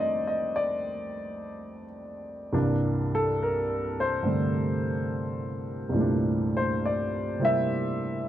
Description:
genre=solo jazz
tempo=70 BPM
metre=4/4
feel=swing 69% on 8ths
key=C mixolydian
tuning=A4 = 441 Hz
part: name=warm upright piano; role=solo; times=0.0-8.3 s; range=C2 to E5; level=-26 LUFS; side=equal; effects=none
room=light reverb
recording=dark, warm production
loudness=-25 LUFS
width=side -12 dB against mid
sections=0.0-8.3 A section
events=upright piano solo 0.0-8.3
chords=0.0 F13; 2.5 C13

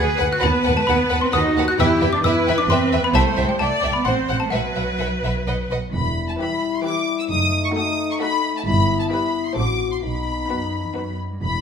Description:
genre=cinematic, playful, whimsical film cue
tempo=132 BPM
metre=3/4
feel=straight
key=E minor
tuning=A4 = 440 Hz
part: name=rich symphonic violin section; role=melody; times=0.0-11.6 s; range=F#5 to E6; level=-26 LUFS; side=left 3 dB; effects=none
part: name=trough xylophone with rubber mallets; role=melody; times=0.0-5.4 s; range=F#5 to G#6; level=-24 LUFS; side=left 2 dB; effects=none
part: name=rich chamber violin section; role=second line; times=0.0-11.3 s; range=E4 to F#5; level=-26 LUFS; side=left 2 dB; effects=none
part: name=rich studio viola section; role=accompaniment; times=0.0-11.3 s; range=E3 to D5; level=-25 LUFS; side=equal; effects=none
part: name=rich chamber cello section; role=bass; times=0.0-11.6 s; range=E2 to G#4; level=-24 LUFS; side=right 2 dB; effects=none
part: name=rich chamber double bass section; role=bass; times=0.0-11.6 s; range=E1 to E2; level=-23 LUFS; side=right 2 dB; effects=none
part: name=warm French horn section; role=sustained chords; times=5.9-11.6 s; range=G3 to F#4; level=-25 LUFS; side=left 5 dB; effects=none
room=wet recital hall reverb, RT60 1.5 s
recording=minimal, uncompressed stereo recording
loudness=-18 LUFS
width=side -7 dB against mid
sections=0.0-5.9 A section; 5.9-11.6 B section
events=none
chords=0.4 B7/D#; 1.8 Em; 3.1 C; 4.1 F#dim; 4.5 Bsus4; 5.5 B; 5.9 Em; 7.3 D#dim/F#; 8.7 Em/G; 9.6 F#dim/A; 10.0 B

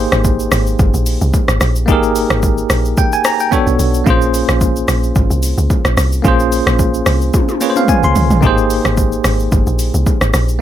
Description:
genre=amapiano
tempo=110 BPM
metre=4/4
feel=swing 55% on 16ths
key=Ab major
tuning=A4 = 440 Hz
part: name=bell-like tine electric piano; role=accompaniment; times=0.0-10.6 s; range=Bb3 to C6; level=-16 LUFS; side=equal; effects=fast stereo tremolo
part: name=deep log drum bass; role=bass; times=0.0-10.6 s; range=G1 to Db2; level=-15 LUFS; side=equal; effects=none
part: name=deep house drum kit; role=drums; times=0.1-10.6 s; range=hi-hat, kick drum, rim click, shaker, toms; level=-15 LUFS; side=equal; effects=none
room=little or no reverb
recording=none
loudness=-11 LUFS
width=side -11 dB against mid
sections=0.0-10.6 A section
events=tine electric piano fill 3.2-4.1, 7.3-8.4; drum fill 7.3-8.4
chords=0.0 Abmaj9; 3.5 Bm9; 4.1 Bbm9; 8.4 Abmaj9

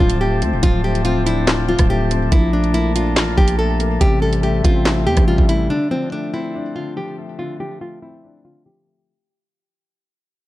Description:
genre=hip hop, drill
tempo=142 BPM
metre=4/4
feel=half-time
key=D minor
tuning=A4 = 441 Hz
part: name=nylon-string guitar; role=melody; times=0.0-9.1 s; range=C4 to A4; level=-22 LUFS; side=equal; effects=low-pass filter, ping-pong delay
part: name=dark concert grand piano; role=accompaniment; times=0.0-9.1 s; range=C3 to F4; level=-23 LUFS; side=left 5 dB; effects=low-pass filter
part: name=mellow brass ensemble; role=sustained chords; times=0.0-5.7 s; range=F3 to Bb5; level=-28 LUFS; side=equal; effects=none
part: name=growling 808-style bass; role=bass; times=0.0-5.7 s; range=D1 to E2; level=-19 LUFS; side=equal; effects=none
part: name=drill drum kit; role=drums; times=0.0-5.6 s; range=handclaps, hi-hat, kick drum, rim click, snare drum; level=-17 LUFS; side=equal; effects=vintage 12-bit sampler grit
room=studio ambience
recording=dark, warm production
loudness=-15 LUFS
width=side -16 dB against mid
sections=0.0-5.7 A section; 5.7-9.1 B section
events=fade-out 5.7-9.1; filter sweep 5.7-9.1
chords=0.0 Dm7; 2.3 Bbmaj7; 4.0 Am7; 5.7 Dm7

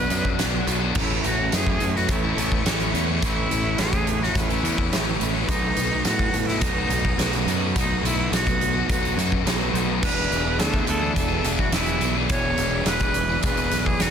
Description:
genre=rock, shoegaze and dream pop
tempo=106 BPM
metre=4/4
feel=straight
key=A major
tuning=A4 = 437 Hz
part: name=bright concert flute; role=melody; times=0.0-14.1 s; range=D#4 to C#5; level=-27 LUFS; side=equal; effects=analog delay
part: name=crunchy overdriven guitar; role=riff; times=0.0-14.1 s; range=A2 to G#4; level=-28 LUFS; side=left 15 dB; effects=wide subtle chorus
part: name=crunchy overdriven guitar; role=riff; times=0.0-14.1 s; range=A2 to G#4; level=-29 LUFS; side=right 14 dB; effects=reverse reverb
part: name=modern bright fingered electric bass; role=bass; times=0.0-14.1 s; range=E1 to A2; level=-27 LUFS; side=equal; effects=none
part: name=huge arena drum kit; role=drums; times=0.1-14.1 s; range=crash cymbal, hi-hat, kick drum, snare drum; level=-25 LUFS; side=equal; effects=none
part: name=string machine, full ensemble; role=sustained chords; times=1.0-14.1 s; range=B4 to D#6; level=-34 LUFS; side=equal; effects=phaser, ensemble chorus
room=studio reverb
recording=dense, heavily limited modern master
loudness=-20 LUFS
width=side -8 dB against mid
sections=0.0-14.1 A section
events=none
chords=0.0 Bm; 1.0 Aadd9; 5.5 B7; 10.0 E5

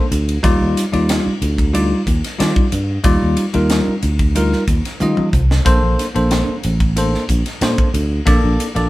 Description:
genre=electric jazz fusion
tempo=92 BPM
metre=4/4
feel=straight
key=unclear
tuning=A4 = 440 Hz
part: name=bell-like tine electric piano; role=accompaniment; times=0.0-8.9 s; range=G3 to Eb5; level=-18 LUFS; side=left 1 dB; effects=medium stereo tremolo
part: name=sustaining fretless electric bass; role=bass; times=0.1-8.9 s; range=A1 to Eb3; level=-17 LUFS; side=equal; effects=none
part: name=crisp fusion drum kit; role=drums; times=0.1-8.9 s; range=hi-hat, kick drum, ride cymbal, snare drum, toms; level=-19 LUFS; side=equal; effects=none
room=light reverb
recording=band playing live in one room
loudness=-14 LUFS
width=side -18 dB against mid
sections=0.0-8.9 A section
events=drum fill 5.0-5.7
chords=0.4 Ebmaj9; 5.7 Bbmaj9

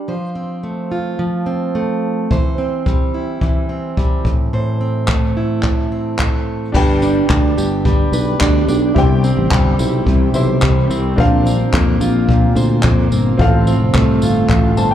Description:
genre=acoustic pop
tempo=108 BPM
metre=4/4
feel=straight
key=unclear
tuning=A4 = 439 Hz
part: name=fingerpicked plugged-in steel-string acoustic guitar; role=accompaniment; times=0.0-14.9 s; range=A2 to C5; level=-17 LUFS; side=right 1 dB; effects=slapback echo
part: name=jazz brush drum kit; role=drums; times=2.3-14.9 s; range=crash cymbal, handclaps, kick drum, tambourine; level=-17 LUFS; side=left 1 dB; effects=none
part: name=warm concert grand piano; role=accompaniment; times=6.7-14.9 s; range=C4 to A5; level=-22 LUFS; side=left 3 dB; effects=slapback echo
part: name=ethereal airy pad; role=sustained chords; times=8.1-14.9 s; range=C3 to G4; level=-24 LUFS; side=equal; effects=ensemble chorus, built-in reverb
part: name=sustaining fretless electric bass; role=bass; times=6.7-14.9 s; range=F1 to F2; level=-17 LUFS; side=left 1 dB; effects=none
room=studio reverb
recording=live gig heard through the venue's PA, club ambience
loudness=-13 LUFS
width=side -10 dB against mid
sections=0.0-6.7 A section; 6.7-14.9 B section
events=grand piano fill 14.5-14.9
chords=0.1 F; 2.3 C/E; 4.2 Am; 6.7 G; 9.0 C; 11.2 Bbadd9; 13.4 F

